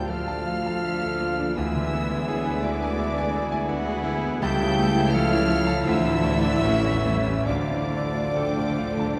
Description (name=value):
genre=classical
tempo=67-86 BPM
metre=4/4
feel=rubato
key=D minor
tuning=A4 = 439 Hz
part: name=bright concert grand piano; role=melody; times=0.0-9.2 s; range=A1 to A5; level=-30 LUFS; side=equal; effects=none
part: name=rich symphonic violin section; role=melody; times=0.0-9.2 s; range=D6 to G6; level=-38 LUFS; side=equal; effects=none
part: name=mellow cor anglais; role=second line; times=0.0-9.2 s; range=G#4 to D5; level=-40 LUFS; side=equal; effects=none
part: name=mellow hollow flute section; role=second line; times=0.0-9.2 s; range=D5 to G5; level=-36 LUFS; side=equal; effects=none
part: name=rich chamber violin section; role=second line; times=0.0-9.2 s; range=D4 to B4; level=-41 LUFS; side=equal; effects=none
part: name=rich chamber viola section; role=accompaniment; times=0.0-9.2 s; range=G3 to F#4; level=-35 LUFS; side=equal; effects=none
part: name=warm bassoon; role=accompaniment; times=0.0-9.2 s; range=E3 to F3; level=-39 LUFS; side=equal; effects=none
part: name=dark French horn section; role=sustained chords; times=0.0-9.2 s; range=D4 to G4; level=-34 LUFS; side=equal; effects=none
part: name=dark trombone section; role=sustained chords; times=0.0-9.2 s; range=E3 to D4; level=-38 LUFS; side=equal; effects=none
part: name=warm trumpet section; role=stabs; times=0.0-9.2 s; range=D5 to G5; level=-36 LUFS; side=equal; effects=none
part: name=rich chamber double bass section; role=bass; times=0.0-9.2 s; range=A1 to D2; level=-36 LUFS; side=equal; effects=none
part: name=warm chamber cello section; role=bass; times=0.0-9.2 s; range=D3 to G3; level=-34 LUFS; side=equal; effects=none
part: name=warm tuba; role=bass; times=0.0-9.2 s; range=A1 to D2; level=-36 LUFS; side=equal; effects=none
part: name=clear clarinet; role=second line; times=0.1-9.2 s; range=B4 to G5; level=-39 LUFS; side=equal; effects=none
part: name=timpani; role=percussion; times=7.5-9.2 s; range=D3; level=-36 LUFS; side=equal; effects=none
room=wet concert hall reverb, RT60 2.6 s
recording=dark, warm production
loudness=-24 LUFS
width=mono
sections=0.0-9.2 A section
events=timpani fill 7.5-9.2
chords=0.0 Dm; 1.6 E7/D; 4.4 A7/C#; 5.9 Dm; 6.6 A; 7.5 Dm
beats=0.09 0.83 | 1.56 2.28 2.98 3.70 | 4.42 5.13 5.86 6.62 | 7.46 8.34